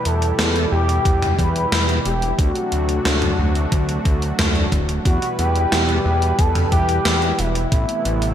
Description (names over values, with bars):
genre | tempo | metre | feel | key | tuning
synthwave | 90 BPM | 4/4 | straight | E minor | A4 = 438 Hz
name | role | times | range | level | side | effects
expressive synth lead | melody | 0.0-8.3 s | E4 to B4 | -23 LUFS | left 1 dB | analog chorus, slapback echo, ping-pong delay
warm analog pad | sustained chords | 0.0-8.3 s | B2 to B4 | -25 LUFS | equal | chorus, sidechain pumping
fat analog bass | bass | 0.1-8.3 s | D1 to E2 | -21 LUFS | equal | tube saturation
gated 80s digital drum machine | drums | 0.1-8.3 s | hi-hat, snare drum, toms | -23 LUFS | equal | gated reverb, gated reverb snare
electronic kick drum | drums | 1.1-7.9 s | none | -19 LUFS | equal | none
room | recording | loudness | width
moderate concert hall reverb, RT60 2.4 s | big arena sound | -16 LUFS | side -10 dB against mid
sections
0.0-8.3 A section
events
none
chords
0.0 Em; 2.4 D7; 5.1 Em; 7.7 Amadd9